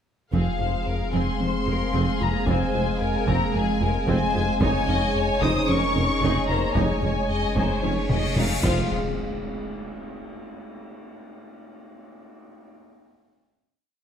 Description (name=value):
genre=cinematic, hybrid orchestral and electronic film score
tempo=112 BPM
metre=4/4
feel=straight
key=F minor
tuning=A4 = 440 Hz
part: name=warm studio violin section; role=melody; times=0.3-8.9 s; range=F5 to Eb6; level=-28 LUFS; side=left 4 dB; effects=none
part: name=clear studio violin section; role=second line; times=0.3-8.9 s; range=C4 to F5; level=-32 LUFS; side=left 4 dB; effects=none
part: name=rich symphonic viola section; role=accompaniment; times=0.3-8.9 s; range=F3 to Db5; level=-32 LUFS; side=right 3 dB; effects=none
part: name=mellow French horn section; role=sustained chords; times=0.3-8.9 s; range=F3 to F4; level=-32 LUFS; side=left 2 dB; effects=none
part: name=warbly tape-like pad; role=sustained chords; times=0.7-8.9 s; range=Ab3 to F5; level=-30 LUFS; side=right 1 dB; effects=chorus, built-in reverb
part: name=soft round pluck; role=arpeggios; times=0.3-8.5 s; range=Db3 to Ab4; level=-33 LUFS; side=right 4 dB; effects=chorus
part: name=round analog bass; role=riff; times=0.3-8.5 s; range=F2 to F3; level=-30 LUFS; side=left 3 dB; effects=none
part: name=mellow tuba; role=bass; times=0.3-8.9 s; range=F1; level=-33 LUFS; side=right 3 dB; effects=none
part: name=punchy sub bass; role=bass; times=0.3-8.9 s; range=F1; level=-32 LUFS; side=equal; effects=none
part: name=rich studio double bass section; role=bass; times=0.3-8.9 s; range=F1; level=-33 LUFS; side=right 4 dB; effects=none
part: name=rich symphonic cello section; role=bass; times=0.3-8.9 s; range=F2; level=-32 LUFS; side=right 3 dB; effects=none
part: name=solo taiko drums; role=drums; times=0.3-9.7 s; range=none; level=-30 LUFS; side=equal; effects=none
part: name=cymbal swell and impact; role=sound effects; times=8.0-10.8 s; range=none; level=-34 LUFS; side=equal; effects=none
room=moderate scoring stage reverb, RT60 1.6 s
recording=none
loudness=-21 LUFS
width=side -8 dB against mid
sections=0.3-8.9 theme; 8.9-11.0 final hit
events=cymbal swell 8.0-8.9; drum fill 8.1-8.9; impact 8.9-11.0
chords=0.3 Fm; 4.6 Dbsus2/F; 6.8 Absus4/F; 8.6 Fm; 8.9 N.C.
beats=| 0.33 0.86 1.40 1.94 | 2.47 3.01 3.54 4.08 | 4.61 5.15 5.69 6.22 | 6.76 7.29 7.83 8.36 | 8.90 9.44 9.97 10.51